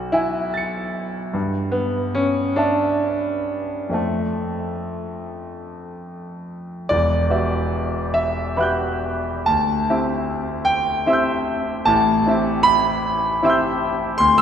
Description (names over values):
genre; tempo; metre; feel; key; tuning
classical, impressionist solo piano; 40-53 BPM (dotted quarters); 6/8; rubato; E minor; A4 = 440 Hz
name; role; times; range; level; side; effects
clear concert grand piano; solo; 0.0-14.4 s; E1 to C#7; -18 LUFS; equal; none
room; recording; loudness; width
wet church reverb, RT60 3.1 s; recorded in a church or concert hall; -18 LUFS; side -8 dB against mid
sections
0.0-6.9 A section; 6.9-14.4 B section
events
none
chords
0.0 F#m9/B; 1.3 Gsus2; 4.0 Fmaj7; 6.9 Emadd9; 9.5 D9sus4; 11.9 Am7